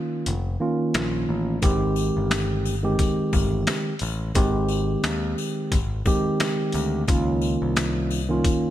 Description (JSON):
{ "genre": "hip hop, boom-bap hip-hop", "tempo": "88 BPM", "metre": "4/4", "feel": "swing 57% on 16ths", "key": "Ab major", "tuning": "A4 = 440 Hz", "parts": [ { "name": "mellow tine electric piano", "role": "accompaniment", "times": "0.0-8.7 s", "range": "Eb3 to G4", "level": "-24 LUFS", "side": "right 1 dB", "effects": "none" }, { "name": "picked electric bass", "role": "bass", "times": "0.3-8.4 s", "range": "F1 to Eb2", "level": "-26 LUFS", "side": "left 1 dB", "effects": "none" }, { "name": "trip hop sampler-style drum kit", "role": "drums", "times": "0.3-8.6 s", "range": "hi-hat, kick drum, snare drum", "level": "-25 LUFS", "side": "left 1 dB", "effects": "none" }, { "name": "sleigh bells", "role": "percussion", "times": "1.6-8.6 s", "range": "none", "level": "-37 LUFS", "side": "left 8 dB", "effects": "none" } ], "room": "light reverb", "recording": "none", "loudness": "-21 LUFS", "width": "side -12 dB against mid", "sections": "0.0-8.7 A section", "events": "break 0.0-1.6", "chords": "0.0 Db69; 1.6 Abmaj7; 7.1 Db69" }